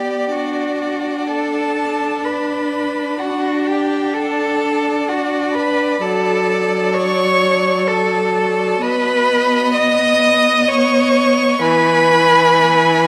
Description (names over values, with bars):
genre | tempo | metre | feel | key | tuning
classical, slow romantic movement for string quartet | 64 BPM | 3/4 | rubato | unclear | A4 = 440 Hz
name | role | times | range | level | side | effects
rich violin | melody | 0.0-13.1 s | D5 to G#5 | -26 LUFS | equal | none
rich violin | second line | 0.0-13.1 s | F#5 to D#6 | -23 LUFS | equal | none
rich viola | accompaniment | 0.0-13.1 s | E3 to D4 | -22 LUFS | equal | none
bright cello | bass | 0.0-13.1 s | F#4 to D#5 | -19 LUFS | equal | none
room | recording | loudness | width
wet cathedral reverb, RT60 5.7 s | in a vast, echoing space | -16 LUFS | mono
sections
0.0-13.1 A section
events
none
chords
0.3 Bm/D; 3.2 D; 6.0 D/F#; 8.8 B; 11.6 E